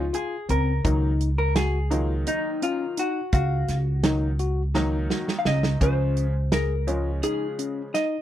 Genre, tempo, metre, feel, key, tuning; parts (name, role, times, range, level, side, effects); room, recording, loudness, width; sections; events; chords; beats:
progressive instrumental, band music in an uneven meter; 169 BPM (eighths); 7/8; straight; A4 = 440 Hz
vintage hollow-body jazz guitar; melody; 0.0-8.2 s; Eb4 to F5; -28 LUFS; left 1 dB; slapback echo
bright grand piano; accompaniment; 0.0-7.9 s; Db3 to Eb4; -31 LUFS; right 2 dB
upright bass; bass; 0.0-7.2 s; Db2; -24 LUFS; equal
barky tine electric piano; arpeggios; 0.1-8.2 s; C4 to F5; -30 LUFS; left 6 dB
warm soul drum kit; drums; 0.1-8.1 s; hi-hat, kick drum, snare drum; -26 LUFS; right 2 dB
light reverb; -22 LUFS; side -12 dB against mid
0.0-8.2 A section
drum fill 4.8-5.8
0.0 Db; 0.8 Ebm/Db; 5.8 Db
0.14 0.49 | 0.85 1.20 1.56 1.91 2.27 2.62 2.98 | 3.33 3.69 4.04 4.40 4.75 5.11 5.46 | 5.82 6.17 6.53 6.88 7.24 7.59 7.95